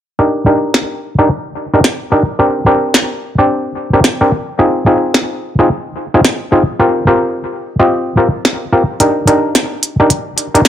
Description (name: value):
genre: glitch hop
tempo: 109 BPM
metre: 4/4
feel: swing 63% on 16ths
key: unclear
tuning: A4 = 440 Hz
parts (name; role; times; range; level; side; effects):
- muted clav; stabs; 0.2-10.6 s; C4 to Eb5; -12 LUFS; equal; low-pass filter, analog delay
- glitchy drum kit; drums; 0.7-10.7 s; hi-hat, snare drum; -12 LUFS; equal; none
room: moderate digital room reverb, RT60 1.1 s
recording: dry, gritty hardware recording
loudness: -11 LUFS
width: side -10 dB against mid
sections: 0.2-10.7 A section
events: none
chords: 0.2 Ebmaj7/D; 2.4 Gmadd11/C; 4.6 Ab6/C; 6.8 Eb69; 9.0 Ebmaj7/D